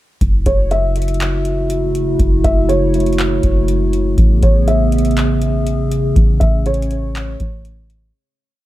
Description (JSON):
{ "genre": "hip hop, atmospheric cloud-rap", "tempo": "121 BPM", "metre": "4/4", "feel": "half-time", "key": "F# minor", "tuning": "A4 = 435 Hz", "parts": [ { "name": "dark analog pad", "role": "sustained chords", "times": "0.2-8.1 s", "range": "C#3 to G#4", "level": "-18 LUFS", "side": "equal", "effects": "lush chorus, sidechain pumping" }, { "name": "soft 808-style bass", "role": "bass", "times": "0.2-8.1 s", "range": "F#1 to A1", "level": "-16 LUFS", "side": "equal", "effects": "none" }, { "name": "booming analog drum machine", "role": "drums", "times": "0.2-8.0 s", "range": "handclaps, hi-hat, kick drum", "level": "-18 LUFS", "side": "equal", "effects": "none" }, { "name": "felt-muted upright piano", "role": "melody", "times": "0.5-7.6 s", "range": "C#5 to E5", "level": "-22 LUFS", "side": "equal", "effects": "low-pass filter, dub echo" } ], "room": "little or no reverb", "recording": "echo-heavy mix", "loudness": "-13 LUFS", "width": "side -15 dB against mid", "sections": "0.2-8.1 verse", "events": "fade-out 6.2-8.1", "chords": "0.2 F#m7; 4.2 Amaj9", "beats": "| 0.21 0.71 1.20 1.70 | 2.19 2.69 3.19 3.68 | 4.18 4.67 5.17 5.67 | 6.16 6.66 7.15 7.65" }